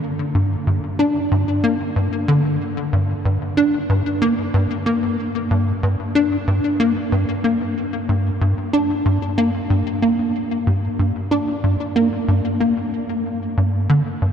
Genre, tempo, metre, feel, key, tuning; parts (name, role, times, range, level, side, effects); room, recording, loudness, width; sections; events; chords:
ambient; 93 BPM; 4/4; straight; G minor; A4 = 440 Hz
tight sequencer bass; solo; 0.3-14.3 s; G2 to D4; -17 LUFS; equal; ensemble chorus, ping-pong delay
wet huge ambient reverb, RT60 8.5 s; dark, warm production; -17 LUFS; side -8 dB against mid
0.0-14.2 A section